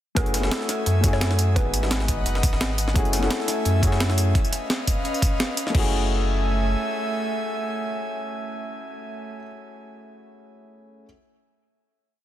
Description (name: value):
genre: liquid drum and bass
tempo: 172 BPM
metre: 4/4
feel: swing 54% on 16ths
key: F# dorian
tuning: A4 = 439 Hz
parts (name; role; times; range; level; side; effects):
- dark concert grand piano; accompaniment; 0.1-11.1 s; G#3 to A4; -29 LUFS; left 2 dB; dub echo
- hollow square pluck; melody; 0.2-1.9 s; B4 to C#5; -34 LUFS; right 2 dB; chorus, digital delay
- airy breathy pad; sustained chords; 0.6-9.3 s; A3 to G#5; -30 LUFS; right 1 dB; chorus, sidechain pumping
- warm sub bass; bass; 0.2-6.8 s; F#1 to F#2; -23 LUFS; equal; none
- breakbeat sampler-style drum kit; drums; 0.2-5.8 s; crash cymbal, hi-hat, snare drum, tambourine; -28 LUFS; equal; none
- breakbeat sampler-style drum kit; drums; 0.2-4.3 s; hi-hat, snare drum; -33 LUFS; equal; high-pass filter on hats, high-pass filter on snare
- electronic kick drum; drums; 0.2-5.8 s; none; -23 LUFS; equal; none
room: light reverb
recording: dense, heavily limited modern master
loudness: -21 LUFS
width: side -12 dB against mid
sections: 0.2-5.7 drop; 5.7-8.5 final chord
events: drop 0.2-5.7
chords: 0.2 F#m9; 1.6 G#m7; 3.0 F#m9; 4.4 C#9; 5.7 F#m9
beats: | 0.17 0.52 0.86 1.21 | 1.56 1.91 2.26 2.61 | 2.96 3.31 3.65 4.00 | 4.35 4.70 5.05 5.40 | 5.75 6.10 6.45 6.79 | 7.14 7.49 7.84 8.19